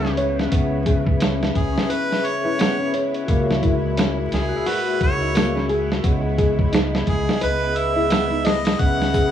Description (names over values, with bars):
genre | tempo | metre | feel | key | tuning
trip hop | 87 BPM | 4/4 | swing 59% on 16ths | C# dorian | A4 = 440 Hz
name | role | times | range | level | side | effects
clear harmonica | melody | 0.0-9.3 s | G#4 to F#5 | -26 LUFS | right 1 dB | cassette tape, dub echo
vibraphone with medium mallets | accompaniment | 0.0-9.3 s | C#4 to E6 | -26 LUFS | left 2 dB | tremolo, cassette tape, tape echo
bright symphonic string section | sustained chords | 0.0-9.3 s | A#2 to E4 | -30 LUFS | right 1 dB | cassette tape
nylon-string guitar | arpeggios | 0.0-9.3 s | A#3 to D#5 | -26 LUFS | left 2 dB | cassette tape, dub echo
upright bass | bass | 0.0-9.3 s | C#2 | -24 LUFS | equal | none
dusty soul sampler-style drum kit | drums | 0.0-9.3 s | hi-hat, kick drum, snare drum | -21 LUFS | right 1 dB | studio reverb, cassette tape
triangle | percussion | 9.1-9.3 s | none | -46 LUFS | left 2 dB | none
room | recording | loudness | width
light reverb | home recording on cassette, vinyl crackle, small room ambience | -18 LUFS | side -9 dB against mid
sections
0.0-9.3 A section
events
none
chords
0.0 C#m7; 3.3 F#9/C#; 6.0 Emaj7/C#; 8.8 C#m7